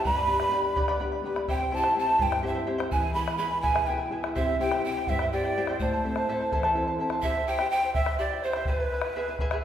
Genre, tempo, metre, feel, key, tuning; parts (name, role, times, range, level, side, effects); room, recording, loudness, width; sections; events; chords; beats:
andean folk, Andean ensemble; 83 BPM (dotted quarters); 6/8; straight; A4 = 439 Hz
breathy mellow quena; melody; 0.0-9.6 s; B4 to B5; -28 LUFS; equal
breathy pan flute; second line; 0.0-9.6 s; B4 to B5; -33 LUFS; right 5 dB
charango; accompaniment; 0.0-9.6 s; E4 to B5; -32 LUFS; equal
bombo; percussion; 0.0-9.6 s; -31 LUFS; equal
nylon-string guitar; accompaniment; 0.1-7.2 s; E2 to A4; -32 LUFS; left 2 dB
wet recital hall reverb, RT60 1.7 s; recorded in a church or concert hall; -24 LUFS; side -10 dB against mid
0.0-7.2 A section; 7.2-9.6 A section
0.0 G; 1.5 C; 2.9 E; 4.4 C; 5.8 Am; 7.2 C; 8.7 E
| 0.04 0.76 | 1.48 2.20 | 2.92 3.64 | 4.36 5.08 | 5.80 6.51 | 7.23 7.95 | 8.67 9.39